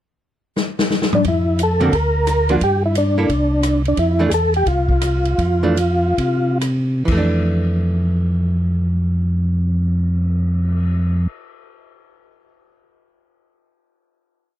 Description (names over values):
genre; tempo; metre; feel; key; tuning
soul jazz organ trio; 123-177 BPM; 4/4; swing 64% on 8ths; F major; A4 = 440 Hz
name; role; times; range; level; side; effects
swinging big-band drum kit; drums; 0.6-10.9 s; crash cymbal, cymbal swell, hi-hat, kick drum, ride cymbal, rim click, snare drum, toms; -24 LUFS; left 1 dB; none
percussive tonewheel organ; melody; 1.1-6.6 s; D4 to A#4; -18 LUFS; equal; slow rotary speaker, chorus vibrato
mellow tonewheel organ; bass; 1.2-11.3 s; C2 to C3; -18 LUFS; equal; chorus vibrato, slow rotary speaker
archtop guitar, miked and amplified; accompaniment; 1.8-11.4 s; D3 to A4; -21 LUFS; right 2 dB; none
room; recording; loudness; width
little or no reverb; lossy compression artefacts; -16 LUFS; side -12 dB against mid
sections
0.0-1.2 pickup bar; 1.2-7.1 A section; 7.1-11.0 final chord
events
drum fill 0.6-1.2; slowing down 4.0-7.1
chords
0.0 N.C.; 1.2 F6; 1.9 D(#5, no3); 2.6 Gm; 3.3 Csus2; 4.0 F5; 7.1 F6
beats
0.23 0.57 0.91 | 1.25 1.59 1.93 2.27 | 2.61 2.95 3.29 3.63 | 3.97 4.31 4.66 5.02 | 5.38 5.77 6.18 6.61 | 7.08 7.56 8.05 8.53 | 9.02 9.50 9.99 10.48